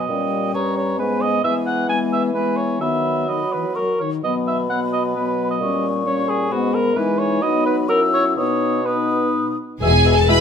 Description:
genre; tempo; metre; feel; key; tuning
quick classical-period movement for symphony orchestra; 124-134 BPM; 3/4; rubato; B major; A4 = 440 Hz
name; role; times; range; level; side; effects
dark cor anglais; second line; 0.0-10.4 s; F#4 to G#5; -22 LUFS; right 3 dB; none
mellow hollow concert flute; second line; 0.0-9.6 s; G5 to E6; -26 LUFS; left 4 dB; none
mellow bassoon; accompaniment; 0.0-10.4 s; G2 to F#3; -25 LUFS; right 3 dB; none
mellow French horn section; sustained chords; 0.0-10.4 s; D#3 to G#4; -22 LUFS; left 6 dB; none
rich studio violin section; melody; 9.8-10.4 s; G#5 to B5; -18 LUFS; right 2 dB; none
rich studio violin section; second line; 9.8-10.4 s; G#4 to B4; -21 LUFS; left 1 dB; none
rich studio cello section; bass; 9.8-10.2 s; E2; -21 LUFS; equal; none
rich studio double bass section; bass; 9.8-10.2 s; E1; -18 LUFS; right 2 dB; none
rich studio viola section; accompaniment; 10.3-10.4 s; G#3 to E4; -19 LUFS; equal; none
room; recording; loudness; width
moderate recital hall reverb, RT60 1.8 s; close, detailed microphones; -17 LUFS; side -7 dB against mid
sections
0.0-9.8 A section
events
none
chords
0.1 D#7/A#; 1.0 G#m; 1.4 E; 2.8 B/D#; 3.8 F#; 4.2 B5; 5.6 A#m6; 6.5 G#m; 7.0 Emaj7; 7.4 B/F#; 7.9 F#7; 8.4 B; 9.8 E

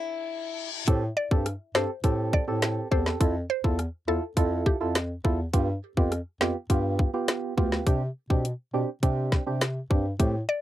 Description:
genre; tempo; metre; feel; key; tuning
dancehall; 103 BPM; 4/4; straight; A minor; A4 = 440 Hz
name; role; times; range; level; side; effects
picked acoustic archtop guitar; arpeggios; 0.0-0.7 s; E4; -35 LUFS; left 6 dB; none
reverse cymbal; sound effects; 0.0-0.9 s; none; -35 LUFS; left 8 dB; none
percussive organ stab; accompaniment; 0.9-10.4 s; A3 to A4; -29 LUFS; right 3 dB; chorus
dark bass clarinet; bass; 0.9-10.4 s; D2 to C3; -29 LUFS; equal; none
island pop drum kit; drums; 0.9-10.3 s; hi-hat, kick drum, rim click, snare drum; -24 LUFS; equal; overdrive
mallet-like synth pluck; melody; 1.2-4.8, 10.5-10.6 s; G4 to D5; -29 LUFS; left 2 dB; chorus
room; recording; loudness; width
little or no reverb; dark, warm production; -24 LUFS; side -14 dB against mid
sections
0.9-10.6 A section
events
break 0.0-0.9; reverse cymbal 0.0-0.9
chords
0.0 N.C.; 0.9 Am7; 3.2 Fmaj7; 5.5 G7; 7.9 Csus2

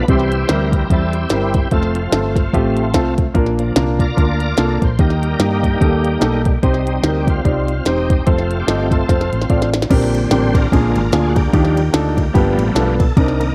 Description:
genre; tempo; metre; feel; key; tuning
uptempo gospel; 146 BPM; 4/4; swing 58% on 8ths; Bb major; A4 = 440 Hz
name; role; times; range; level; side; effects
bright tonewheel organ; sustained chords; 0.0-13.5 s; D3 to D5; -25 LUFS; equal; slow rotary speaker, overdrive, chorus vibrato
warm concert grand piano; accompaniment; 0.1-13.5 s; G2 to Eb5; -21 LUFS; equal; none
hollow-body short-scale fingered electric bass; bass; 0.1-13.5 s; E1 to G2; -22 LUFS; equal; none
minimal click drum kit; drums; 0.1-13.5 s; crash cymbal, hi-hat, kick drum, ride cymbal, snare drum; -19 LUFS; equal; none
room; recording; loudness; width
light reverb, digital ambience; dark, warm production; -16 LUFS; mono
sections
0.0-9.9 A section; 9.9-13.5 B section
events
tonewheel organ solo 0.0-9.9, 9.9-13.5; drum fill 9.1-9.9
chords
0.1 C; 1.7 F; 3.4 Bb; 5.0 Eb; 6.6 Cm; 8.3 F; 9.9 Bb69; 10.7 Bb7; 11.5 Ebmaj9; 12.4 G7

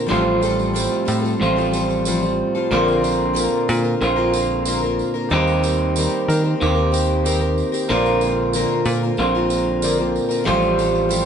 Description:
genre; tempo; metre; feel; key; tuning
folk rock and heartland rock; 93 BPM; 4/4; straight; unclear; A4 = 439 Hz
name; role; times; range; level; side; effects
clear concert grand piano; accompaniment; 0.0-11.3 s; G4 to F5; -34 LUFS; right 3 dB; none
picked plugged-in twelve-string acoustic guitar; accompaniment; 0.0-11.3 s; A2 to Bb4; -24 LUFS; left 4 dB; none
mellow tonewheel organ; sustained chords; 0.0-11.3 s; C4 to Bb4; -31 LUFS; left 1 dB; none
electric guitar at the edge of break-up; riff; 0.0-11.3 s; A2 to G4; -20 LUFS; right 2 dB; spring reverb
picked electric bass; bass; 0.1-11.2 s; A1 to Eb3; -22 LUFS; equal; none
tambourine; percussion; 0.1-11.3 s; none; -31 LUFS; right 5 dB; none
room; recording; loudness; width
moderate studio reverb, RT60 0.6 s; band playing live in one room, nothing above 10.9 kHz; -17 LUFS; side -7 dB against mid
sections
0.0-11.3 A section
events
none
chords
0.1 Fadd9/A; 2.7 Bbadd9; 5.3 Eb6; 7.9 Bbadd9; 10.5 Fadd9/A

